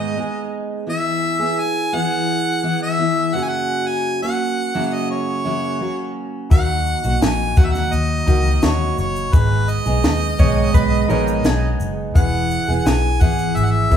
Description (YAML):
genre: acoustic pop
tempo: 85 BPM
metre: 4/4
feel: straight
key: unclear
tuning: A4 = 440 Hz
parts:
  - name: warm harmonica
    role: melody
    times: 0.0-14.0 s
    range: B4 to G#5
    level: -22 LUFS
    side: equal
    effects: none
  - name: picked steel-string acoustic guitar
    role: accompaniment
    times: 0.0-14.0 s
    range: F#2 to G#4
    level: -22 LUFS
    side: right 1 dB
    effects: none
  - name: felt-muted upright piano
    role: accompaniment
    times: 6.5-14.0 s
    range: B3 to G#5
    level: -30 LUFS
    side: left 4 dB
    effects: none
  - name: vintage muted fingered electric bass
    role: bass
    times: 6.5-14.0 s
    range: E1 to D#2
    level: -20 LUFS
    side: equal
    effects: none
  - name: compact cocktail drum kit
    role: drums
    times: 6.5-14.0 s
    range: kick drum, shaker, snare drum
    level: -16 LUFS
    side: left 1 dB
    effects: none
  - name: clean electric guitar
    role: second line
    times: 10.4-11.9 s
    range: G#4 to C#5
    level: -25 LUFS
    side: right 4 dB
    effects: none
room: moderate large studio reverb, RT60 1.2 s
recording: band playing live in one room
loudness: -16 LUFS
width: side -9 dB against mid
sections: 0.0-14.0 A section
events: none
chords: 0.0 G#m; 0.9 E; 3.3 F#; 6.5 D#m; 9.3 G#m; 12.2 E